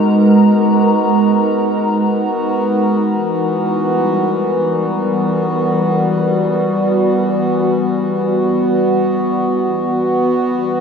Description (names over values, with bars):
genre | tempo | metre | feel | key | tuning
ambient | free time | none | none | unclear | A4 = 440 Hz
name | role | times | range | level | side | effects
warbly tape-like pad | sustained chords | 0.0-10.8 s | E3 to A#5 | -14 LUFS | equal | chorus, built-in reverb
hand-pumped harmonium | drone | 0.0-10.8 s | B3 to F#4 | -19 LUFS | right 1 dB | stereo widening
room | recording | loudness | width
wet huge ambient reverb, RT60 7.8 s | in a vast, echoing space | -13 LUFS | side -6 dB against mid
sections
0.0-10.8 A section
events
none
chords
0.0 G#sus2; 3.1 Em